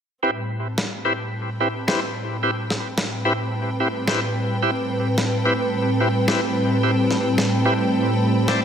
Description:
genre	glitch hop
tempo	109 BPM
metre	4/4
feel	swing 59% on 16ths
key	A minor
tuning	A4 = 441 Hz
part	warm analog pad	sustained chords	0.2-8.6 s	A2 to B4	-22 LUFS	equal	lush chorus
part	bright tonewheel organ	stabs	0.2-8.6 s	C4 to D5	-24 LUFS	equal	overdrive, slow rotary speaker, low-pass filter, analog delay
part	rich studio string section	texture	0.2-8.6 s	C4 to B5	-31 LUFS	equal	none
part	electronic snare drum	drums	0.8-8.6 s	none	-26 LUFS	equal	studio reverb
room	wet plate reverb, RT60 1.9 s, digital ambience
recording	dreamy mix soaked in reverb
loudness	-19 LUFS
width	side -8 dB against mid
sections	0.2-8.6 A section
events	fade-in on string section 0.2-8.6; filter sweep on analog synth pad 0.2-8.6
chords	0.2 Am9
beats	| 0.23 0.78 1.33 1.88 | 2.43 2.98 3.53 4.08 | 4.63 5.18 5.73 6.28 | 6.83 7.38 7.93 8.48

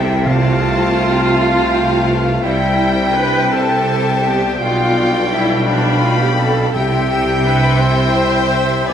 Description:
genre	classical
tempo	56 BPM (dotted quarters)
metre	6/8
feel	rubato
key	C major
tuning	A4 = 440 Hz
part	rich chamber violin section	melody	0.0-8.9 s	E5 to B5	-24 LUFS	left 4 dB	none
part	dark cor anglais	second line	0.0-8.9 s	D5 to A5	-24 LUFS	right 1 dB	none
part	mellow clarinet	second line	0.0-8.9 s	F3 to G#4	-25 LUFS	left 2 dB	none
part	rich studio violin section	second line	0.0-8.9 s	A4 to G6	-27 LUFS	left 4 dB	none
part	silver concert flute	second line	0.0-8.9 s	D5 to D6	-26 LUFS	left 1 dB	none
part	rich chamber viola section	accompaniment	0.0-8.9 s	D4 to D5	-18 LUFS	right 1 dB	none
part	warm French horn section	sustained chords	0.0-8.9 s	G3 to E4	-26 LUFS	left 4 dB	none
part	clear trumpet	stabs	0.0-8.9 s	F5 to G#5	-24 LUFS	left 1 dB	none
part	clear chamber cello section	bass	0.0-8.9 s	B2 to C3	-22 LUFS	left 1 dB	none
part	mellow tuba	bass	0.0-8.9 s	B1 to C2	-22 LUFS	right 2 dB	none
part	rich chamber double bass section	bass	0.0-8.9 s	B1 to C2	-22 LUFS	right 3 dB	none
part	timpani	percussion	0.3-1.3, 6.8-7.8 s	C3	-24 LUFS	right 1 dB	none
room	wet concert hall reverb, RT60 2.4 s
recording	none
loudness	-12 LUFS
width	side -9 dB against mid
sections	0.0-8.9 A section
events	none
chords	0.3 F/C; 2.4 C; 4.6 G7/B; 6.7 C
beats	| 0.25 1.36 | 2.44 3.53 | 4.62 5.67 | 6.75 7.81 | 8.88

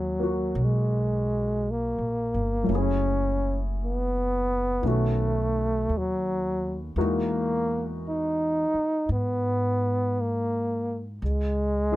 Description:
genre	jazz ballad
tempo	56 BPM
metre	4/4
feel	swing 66% on 8ths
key	unclear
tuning	A4 = 440 Hz
part	warm trombone	melody	0.0-12.0 s	F#3 to D#4	-26 LUFS	equal	none
part	warm baby grand piano	accompaniment	0.0-12.0 s	D#3 to A#4	-32 LUFS	left 2 dB	none
part	upright bass	bass	0.0-12.0 s	F#1 to G#2	-28 LUFS	equal	none
room	little or no reverb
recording	close, detailed microphones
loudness	-24 LUFS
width	side -16 dB against mid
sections	0.0-12.0 A section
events	none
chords	0.0 G#m11; 2.7 F#m9; 4.8 B9; 7.0 Emaj9#11; 11.2 C#5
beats	0.56 1.63 | 2.69 3.76 4.82 5.89 | 6.96 8.02 9.08 10.15 | 11.21

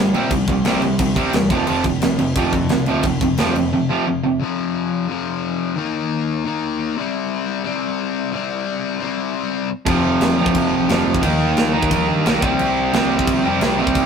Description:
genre	punk rock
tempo	176 BPM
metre	4/4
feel	straight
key	unclear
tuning	A4 = 440 Hz
part	cranked stack guitar	riff	0.0-14.1 s	F2 to Eb4	-22 LUFS	left 7 dB	overdrive
part	distorted electric guitar	riff	0.0-4.4, 9.9-14.1 s	F2 to Eb4	-18 LUFS	right 4 dB	distortion
part	growling picked electric bass	bass	0.0-3.7, 9.9-14.1 s	F1 to C3	-27 LUFS	equal	overdrive
part	tight metal drum kit	drums	0.1-3.6, 9.9-14.0 s	crash cymbal, kick drum, snare drum	-21 LUFS	equal	none
room	light reverb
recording	rough rehearsal-room recording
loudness	-17 LUFS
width	side -6 dB against mid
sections	0.0-4.4 A section; 4.4-14.1 B section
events	none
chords	0.0 C5; 1.5 F5; 5.8 Eb5; 7.0 C5; 9.9 F5; 11.2 Eb; 12.4 C5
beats	| 0.31 0.66 1.00 1.34 | 1.68 2.02 2.37 2.71 | 3.05 3.39 3.73 4.07 | 4.42 4.76 5.10 5.44 | 5.78 6.12 6.46 6.80 | 7.14 7.48 7.82 8.16 | 8.50 8.85 9.19 9.53 | 9.87 10.21 10.55 10.89 | 11.23 11.57 11.91 12.25 | 12.59 12.94 13.28 13.62 | 13.96

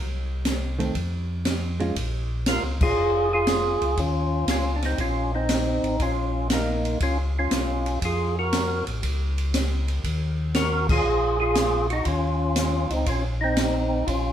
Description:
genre	soul jazz organ trio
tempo	119 BPM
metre	4/4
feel	swing 69% on 8ths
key	unclear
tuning	A4 = 439 Hz
part	mellow tonewheel organ	bass	0.0-14.3 s	F1 to F2	-26 LUFS	equal	slow rotary speaker
part	open jazz drum kit	drums	0.5-14.2 s	crash cymbal, hi-hat, kick drum, ride cymbal, snare drum	-28 LUFS	equal	none
part	hollow-body jazz guitar	accompaniment	0.8-1.9 s	Eb3 to F4	-29 LUFS	right 2 dB	none
part	percussive tonewheel organ	melody	2.5-14.3 s	Bb3 to Bb4	-24 LUFS	equal	slow rotary speaker, overdrive
room	moderate studio reverb, RT60 0.8 s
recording	band playing live in one room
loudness	-22 LUFS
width	side -10 dB against mid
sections	0.0-2.0 A section; 2.0-14.3 A section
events	band accent 2.7, 10.8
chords	0.0 Cm6; 0.9 Fm; 2.0 Bbm7; 4.0 Eb5; 6.0 Bbm; 10.0 Ebm7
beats	0.44 0.94 1.45 | 1.95 2.46 2.96 3.47 | 3.97 4.48 4.98 5.49 | 5.99 6.50 7.00 7.51 | 8.01 8.52 9.02 9.53 | 10.03 10.54 11.04 11.55 | 12.05 12.56 13.06 13.56 | 14.07

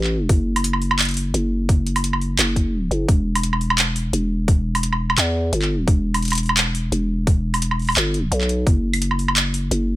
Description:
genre	half-time drum and bass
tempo	172 BPM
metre	4/4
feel	swing 53% on 16ths, half-time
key	E minor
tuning	A4 = 439 Hz
part	growling 808-style bass	bass	0.0-10.0 s	E1 to E2	-21 LUFS	equal	none
part	drum and bass drum kit	drums	0.0-9.8 s	handclaps, hi-hat, woodblock	-20 LUFS	right 1 dB	none
part	electronic kick drum	drums	0.3-8.7 s	none	-16 LUFS	equal	none
room	little or no reverb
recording	none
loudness	-17 LUFS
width	side -16 dB against mid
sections	0.0-10.0 A section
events	none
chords	none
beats	| 0.29 0.64 0.99 1.34 | 1.69 2.04 2.39 2.74 | 3.09 3.43 3.78 4.13 | 4.48 4.83 5.18 5.53 | 5.88 6.22 6.57 6.92 | 7.27 7.62 7.97 8.32 | 8.67 9.02 9.37 9.71

